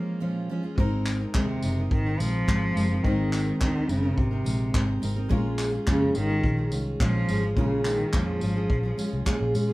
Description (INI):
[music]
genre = acoustic pop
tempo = 106 BPM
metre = 4/4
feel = straight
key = unclear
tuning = A4 = 440 Hz
[part]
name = warm cello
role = melody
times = 0.0-9.3 s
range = C3 to Bb3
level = -29 LUFS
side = equal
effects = none
[part]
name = bright upright piano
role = accompaniment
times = 0.0-9.7 s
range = Ab3 to Db5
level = -37 LUFS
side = left 2 dB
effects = none
[part]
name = picked steel-string acoustic guitar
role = accompaniment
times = 0.0-9.7 s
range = Bb2 to Bb4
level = -28 LUFS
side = right 1 dB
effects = none
[part]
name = vintage muted fingered electric bass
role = bass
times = 0.8-9.7 s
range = Gb1 to Bb2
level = -28 LUFS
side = equal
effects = none
[part]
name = vintage brush drum kit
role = drums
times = 0.8-9.7 s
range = handclaps, kick drum, tambourine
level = -28 LUFS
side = equal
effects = none
[sound]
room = wet studio reverb, RT60 0.5 s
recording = heard from further back in the room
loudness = -23 LUFS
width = side -19 dB against mid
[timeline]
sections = 0.8-9.7 A section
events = break 0.0-0.8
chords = 0.0 Bbm7; 0.8 Abadd9; 5.3 Bbm7